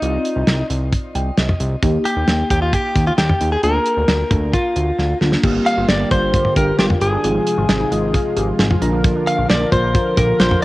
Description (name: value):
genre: synth-pop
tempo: 133 BPM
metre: 4/4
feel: straight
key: unclear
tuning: A4 = 443 Hz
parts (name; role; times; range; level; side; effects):
- direct-recorded clean electric guitar; melody; 0.0-10.6 s; Eb4 to F5; -20 LUFS; left 1 dB; cassette tape, shimmer reverb, tape echo
- mellow FM electric piano; accompaniment; 0.0-10.6 s; Bb3 to Bb5; -25 LUFS; equal; chorus, phaser, shimmer reverb
- fat analog bass; bass; 0.0-10.6 s; G1 to Eb2; -20 LUFS; equal; none
- damped 70s drum kit; drums; 0.0-10.6 s; crash cymbal, hi-hat, kick drum, snare drum, toms; -18 LUFS; equal; cassette tape
- chorused pulse-width pad; sustained chords; 5.4-10.6 s; C3 to Bb4; -22 LUFS; equal; shimmer reverb
- warbly dusty pluck; arpeggios; 5.5-10.6 s; C4 to G4; -28 LUFS; left 1 dB; chorus, shimmer reverb, tape echo
room: moderate spring reverb, RT60 1.3 s, studio ambience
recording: home recording on cassette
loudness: -14 LUFS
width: side -18 dB against mid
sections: 0.0-5.4 A section; 5.4-10.6 B section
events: FM electric piano fill 0.9-1.8, 7.7-9.0; drum fill 5.0-5.4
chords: 0.0 Cmadd9; 1.8 Eb; 3.6 Bb/D; 5.4 Gm7; 7.2 Fm/Ab; 8.8 Bb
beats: | 0.02 0.47 0.92 1.38 | 1.83 2.28 2.73 3.18 | 3.63 4.08 4.53 4.98 | 5.43 5.89 6.34 6.79 | 7.24 7.69 8.14 8.59 | 9.04 9.50 9.95 10.40